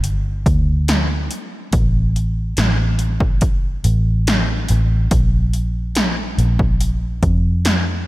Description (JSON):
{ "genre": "pop ballad", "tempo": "71 BPM", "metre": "4/4", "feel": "straight", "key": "unclear", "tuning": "A4 = 440 Hz", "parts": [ { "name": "vintage muted fingered electric bass", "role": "bass", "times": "0.0-8.0 s", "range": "G1 to F2", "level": "-17 LUFS", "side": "equal", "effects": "none" }, { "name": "80s electronic pad drums", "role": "drums", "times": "0.0-7.9 s", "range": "hi-hat, kick drum, snare drum", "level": "-19 LUFS", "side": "equal", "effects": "overdrive" } ], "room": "light reverb, digital ambience", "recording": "none", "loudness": "-15 LUFS", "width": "side -18 dB against mid", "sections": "0.0-8.1 A section", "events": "none", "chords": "none", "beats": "0.05 0.89 | 1.74 2.58 3.43 4.27 | 5.12 5.96 6.81 7.65" }